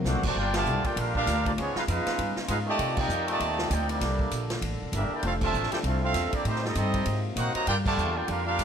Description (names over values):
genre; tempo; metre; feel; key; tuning
jazz, big band swing; 197 BPM; 4/4; swing 60% on 8ths; G minor; A4 = 440 Hz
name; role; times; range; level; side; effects
clear trombone section; sustained chords; 0.0-8.6 s; Bb2 to A4; -37 LUFS; left 1 dB; none
upright bass; bass; 0.0-8.6 s; E1 to C3; -30 LUFS; equal; none
warm trumpet section; melody; 0.1-8.6 s; A3 to Bb5; -29 LUFS; right 1 dB; none
muted trombone section; second line; 0.1-8.6 s; Bb2 to G4; -34 LUFS; right 2 dB; none
swinging big-band drum kit; drums; 0.1-8.6 s; crash cymbal, hi-hat, kick drum, ride cymbal, snare drum; -33 LUFS; equal; none
room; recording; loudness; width
light reverb; none; -25 LUFS; side -8 dB against mid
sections
0.4-8.6 A section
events
band accent 0.5, 2.9, 5.4, 7.8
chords
0.4 Gm7; 1.6 C#9; 2.8 Cm11; 4.0 C13; 5.2 Fmaj7; 6.5 Am7b5; 7.1 Ab13; 7.7 Gm7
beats
0.06 | 0.36 0.67 0.97 1.28 | 1.58 1.88 2.19 2.49 | 2.80 3.10 3.40 3.71 | 4.01 4.32 4.62 4.93 | 5.23 5.54 5.84 6.15 | 6.45 6.76 7.06 7.37 | 7.67 7.98 8.28 8.59